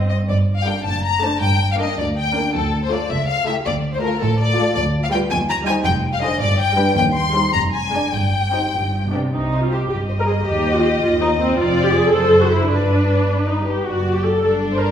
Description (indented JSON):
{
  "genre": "quick classical-period movement for string orchestra",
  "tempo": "107 BPM (dotted quarters)",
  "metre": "6/8",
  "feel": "rubato",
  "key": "G minor, C minor from 4.8 s",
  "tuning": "A4 = 440 Hz",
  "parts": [
    { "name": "warm symphonic viola section", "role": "accompaniment", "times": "0.0-14.9 s", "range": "D3 to C5", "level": "-20 LUFS", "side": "equal", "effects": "none" },
    { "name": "dark symphonic double bass section", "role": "bass", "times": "0.0-14.9 s", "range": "F1 to Eb2", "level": "-24 LUFS", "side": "right 1 dB", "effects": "none" },
    { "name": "warm symphonic cello section", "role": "bass", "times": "0.0-14.9 s", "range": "C#2 to C3", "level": "-24 LUFS", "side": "right 1 dB", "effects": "none" },
    { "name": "rich studio violin section", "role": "melody", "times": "0.1-14.9 s", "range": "A4 to C6", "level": "-22 LUFS", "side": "left 4 dB", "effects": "none" },
    { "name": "rich symphonic violin section", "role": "second line", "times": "0.7-14.9 s", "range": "D4 to Eb5", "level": "-26 LUFS", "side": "left 2 dB", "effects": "none" }
  ],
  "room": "wet recital hall reverb, RT60 1.4 s",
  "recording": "heard from further back in the room",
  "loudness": "-16 LUFS",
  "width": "side -9 dB against mid",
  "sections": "0.3-9.3 A section; 9.3-14.9 B section",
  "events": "none",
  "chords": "0.3 Gm; 0.9 D7/F#; 1.4 Gm; 2.5 Dm; 3.1 A7/C#; 3.7 Dm; 4.8 G7/D; 5.3 Cm/Eb; 5.9 Dm7b5/F; 6.4 G; 7.0 Cm/Eb; 7.5 Ddim/F; 8.1 Cm/G; 8.7 G; 9.3 Cm; 10.5 Cm/Eb; 11.6 F5; 12.1 F#m7b5; 12.7 G; 13.9 D/F#",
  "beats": "| 0.29 0.85 | 1.42 1.99 | 2.55 3.10 | 3.66 4.21 | 4.76 5.31 | 5.85 6.41 | 6.96 7.54 | 8.13 8.74 | 9.34 9.91 | 10.47 11.03 | 11.58 12.14 | 12.71 13.29 | 13.87 14.44"
}